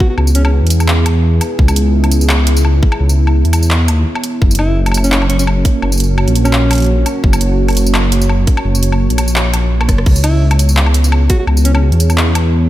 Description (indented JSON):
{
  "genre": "half-time drum and bass",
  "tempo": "170 BPM",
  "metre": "4/4",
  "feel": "swing 55% on 16ths, half-time",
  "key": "C# dorian",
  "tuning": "A4 = 440 Hz",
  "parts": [
    { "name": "mellow alto saxophone", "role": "melody", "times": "0.0-0.5, 4.6-6.9, 10.2-11.8 s", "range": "C#4 to F#4", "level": "-21 LUFS", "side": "equal", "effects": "vintage 12-bit sampler grit, tape echo" },
    { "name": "dark analog pad", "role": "sustained chords", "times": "0.0-12.7 s", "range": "A#3 to C#5", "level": "-19 LUFS", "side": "right 1 dB", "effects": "chorus, vintage 12-bit sampler grit, sidechain pumping" },
    { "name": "electronic kick drum", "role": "drums", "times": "0.0-11.4 s", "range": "none", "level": "-11 LUFS", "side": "equal", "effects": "overdrive, studio reverb" },
    { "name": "dark detuned saw bass", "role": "bass", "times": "0.2-12.7 s", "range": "F#1 to E2", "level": "-12 LUFS", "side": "equal", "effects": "tube saturation" },
    { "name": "drum and bass drum kit", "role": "drums", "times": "0.2-12.4 s", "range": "crash cymbal, handclaps, hi-hat, rim click, tambourine, woodblock", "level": "-19 LUFS", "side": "equal", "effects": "overdrive, studio reverb" }
  ],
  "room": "light reverb",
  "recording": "none",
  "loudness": "-10 LUFS",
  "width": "side -14 dB against mid",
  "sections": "0.0-12.7 A section",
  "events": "drum fill 9.8",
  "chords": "0.0 C#m7; 4.4 F#; 10.1 C#m7",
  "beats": "| 0.18 0.53 0.88 1.24 | 1.59 1.94 2.30 2.65 | 3.00 3.35 3.71 4.06 | 4.41 4.77 5.12 5.47 | 5.83 6.18 6.53 6.88 | 7.24 7.59 7.94 8.30 | 8.65 9.00 9.35 9.71 | 10.06 10.41 10.77 11.12 | 11.47 11.82 12.18 12.53"
}